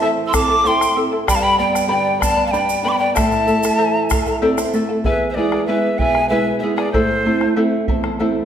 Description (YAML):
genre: andean folk, Andean ensemble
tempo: 64 BPM (dotted quarters)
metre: 6/8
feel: straight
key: A minor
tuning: A4 = 440 Hz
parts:
  - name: breathy bright quena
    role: melody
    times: 0.0-7.6 s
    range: C5 to E6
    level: -19 LUFS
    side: left 1 dB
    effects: none
  - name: breathy mellow pan flute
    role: second line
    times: 0.0-7.6 s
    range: G#4 to C6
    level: -23 LUFS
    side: right 1 dB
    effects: none
  - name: charango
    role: accompaniment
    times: 0.0-8.4 s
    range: E4 to B5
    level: -22 LUFS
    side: left 2 dB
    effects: none
  - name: nylon-string guitar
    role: accompaniment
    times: 0.0-8.4 s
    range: E2 to D5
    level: -21 LUFS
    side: right 2 dB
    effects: none
  - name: bombo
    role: percussion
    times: 0.3-8.2 s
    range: none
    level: -24 LUFS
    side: equal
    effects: none
  - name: tube shaker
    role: percussion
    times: 0.3-4.8 s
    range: none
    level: -30 LUFS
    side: right 6 dB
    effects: none
room: wet recital hall reverb, RT60 1.5 s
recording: none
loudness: -15 LUFS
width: side -9 dB against mid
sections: 0.0-5.0 A section; 5.0-8.4 B section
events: nylon-string guitar fill 4.1-5.0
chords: 0.0 Am; 1.3 G; 3.2 Am; 5.0 E; 6.9 Am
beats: 0.34 | 1.28 2.22 | 3.16 4.11 | 5.05 5.99 | 6.94 7.88